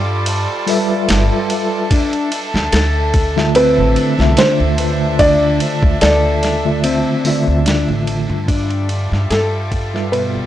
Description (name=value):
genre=trip hop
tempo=73 BPM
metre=4/4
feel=swing 54% on 16ths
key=D dorian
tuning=A4 = 440 Hz
part: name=felt-muted upright piano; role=melody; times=0.0-10.2 s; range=A4 to D5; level=-19 LUFS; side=right 1 dB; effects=tape echo
part: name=mellow tine electric piano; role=accompaniment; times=0.0-10.5 s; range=D3 to E5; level=-19 LUFS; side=equal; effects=medium stereo tremolo, tape echo
part: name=warm chamber violin section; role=sustained chords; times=0.0-10.5 s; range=G3 to E5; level=-24 LUFS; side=right 1 dB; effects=none
part: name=upright bass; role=bass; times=0.0-10.5 s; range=G1 to G2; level=-18 LUFS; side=equal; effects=tube saturation
part: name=dusty soul sampler-style drum kit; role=drums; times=0.3-10.3 s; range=hi-hat, kick drum, ride cymbal, snare drum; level=-20 LUFS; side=equal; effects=small room reverb
part: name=mellow electric guitar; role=arpeggios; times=1.9-10.5 s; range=B2 to A4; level=-21 LUFS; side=left 4 dB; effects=tape echo
room=studio ambience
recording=dry, gritty hardware recording, cassette tape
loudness=-13 LUFS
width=side -12 dB against mid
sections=0.0-10.5 A section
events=fade-out 6.3-10.5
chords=0.0 G13; 1.9 Dmadd9; 8.5 G13